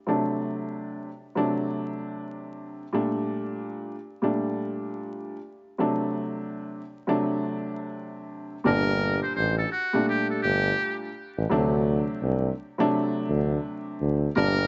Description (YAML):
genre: hip hop, boom-bap hip-hop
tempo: 84 BPM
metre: 4/4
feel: swing 62% on 16ths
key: G harmonic minor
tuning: A4 = 440 Hz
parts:
  - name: dark upright piano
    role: accompaniment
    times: 0.1-14.7 s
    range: Bb2 to D4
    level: -30 LUFS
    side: equal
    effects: cassette tape, high-pass filter, low-pass filter
  - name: trumpet with metal mute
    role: melody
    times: 8.7-14.7 s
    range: F#4 to C5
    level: -29 LUFS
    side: equal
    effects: high-pass filter, low-pass filter
  - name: warm tuba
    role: bass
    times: 8.7-14.7 s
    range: G1 to D2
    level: -28 LUFS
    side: equal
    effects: none
room: light reverb, studio reverb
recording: vinyl crackle, nothing above 7.7 kHz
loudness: -27 LUFS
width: mono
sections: 0.0-8.6 A section; 8.6-14.7 B section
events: none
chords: 0.1 D7; 2.9 Gmadd9; 5.8 D7; 8.6 Gmadd9; 11.5 D7